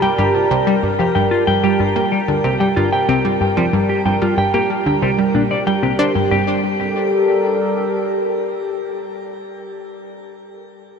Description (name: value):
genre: ambient, sequencer-driven space music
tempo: 93 BPM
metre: 4/4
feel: straight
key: G minor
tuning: A4 = 440 Hz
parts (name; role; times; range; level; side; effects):
- sweeping resonant pad; sustained chords; 0.0-9.7 s; G3 to A5; -19 LUFS; equal; chorus, phaser, shimmer reverb
- semi-hollow electric guitar; arpeggios; 0.0-6.6 s; G3 to G5; -21 LUFS; moving between left 5 dB and right 2 dB; auto-pan, tape echo, shimmer reverb
- analog pluck; riff; 0.0-6.6 s; G2 to D4; -19 LUFS; equal; chorus, tape echo, shimmer reverb
room: wet huge ambient reverb, RT60 8.8 s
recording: dreamy mix soaked in reverb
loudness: -15 LUFS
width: side -6 dB against mid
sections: 0.0-6.3 A section; 6.3-8.9 B section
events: none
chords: 0.0 Gmadd9